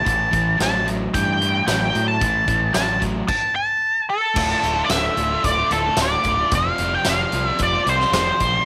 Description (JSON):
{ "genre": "classic rock", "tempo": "112 BPM", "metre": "4/4", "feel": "straight", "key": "D minor from 4.4 s", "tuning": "A4 = 440 Hz", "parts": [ { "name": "octave-fuzz lead guitar", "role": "melody", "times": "0.0-8.7 s", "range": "A4 to A5", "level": "-22 LUFS", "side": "equal", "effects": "wah, distortion, slapback echo" }, { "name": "crunchy overdriven guitar", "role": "riff", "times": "0.0-8.7 s", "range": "D2 to F4", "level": "-28 LUFS", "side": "equal", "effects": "none" }, { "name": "growling fingered electric bass", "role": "bass", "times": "0.0-8.6 s", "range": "D1 to A2", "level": "-28 LUFS", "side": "equal", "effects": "overdrive" }, { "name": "huge arena drum kit", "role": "drums", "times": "0.1-8.5 s", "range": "crash cymbal, hi-hat, kick drum, snare drum, tambourine", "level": "-27 LUFS", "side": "equal", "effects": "none" } ], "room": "studio reverb", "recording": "none", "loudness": "-20 LUFS", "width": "mono", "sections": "0.0-4.4 A section; 4.4-8.7 B section", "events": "lead electric guitar solo 0.0-4.4", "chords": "0.1 A5; 4.4 Dm; 6.5 Fsus2", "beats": "| 0.06 0.59 1.13 1.67 | 2.21 2.75 3.29 3.82 | 4.36 4.90 5.44 5.98 | 6.52 7.05 7.59 8.13" }